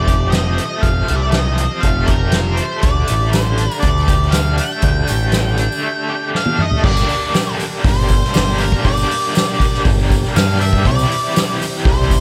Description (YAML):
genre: psychedelic rock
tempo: 120 BPM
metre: 4/4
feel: straight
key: G dorian from 6.8 s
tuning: A4 = 436 Hz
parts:
  - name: octave-fuzz lead guitar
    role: melody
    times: 0.0-12.2 s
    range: Bb4 to G5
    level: -24 LUFS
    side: equal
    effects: distortion, tape echo
  - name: mellow tonewheel organ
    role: sustained chords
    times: 0.0-12.2 s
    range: D4 to A5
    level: -32 LUFS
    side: equal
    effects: chorus vibrato, stopped rotary speaker
  - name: overdriven semi-hollow guitar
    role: riff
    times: 0.0-12.2 s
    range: G2 to G4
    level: -25 LUFS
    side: equal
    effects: tremolo
  - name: growling picked electric bass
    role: bass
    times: 0.0-12.2 s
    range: F1 to G2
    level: -20 LUFS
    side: equal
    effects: overdrive
  - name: soft-mallet drum kit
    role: drums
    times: 0.1-12.2 s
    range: crash cymbal, hi-hat, kick drum, snare drum, toms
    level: -20 LUFS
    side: equal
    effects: none
  - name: tambourine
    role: percussion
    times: 2.8-12.2 s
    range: none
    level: -36 LUFS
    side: equal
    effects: none
room: small room reverb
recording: none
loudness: -16 LUFS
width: mono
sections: 0.0-6.8 A section; 6.8-12.2 B section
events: drum fill 6.3-6.8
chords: 0.0 Fadd9; 2.8 Dsus4; 6.8 Gm; 10.8 Cadd9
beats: 0.34 | 0.84 1.34 1.84 2.34 | 2.84 3.34 3.84 4.34 | 4.84 5.34 5.84 6.35 | 6.85 7.35 7.85 8.35 | 8.85 9.35 9.85 10.35 | 10.85 11.35 11.85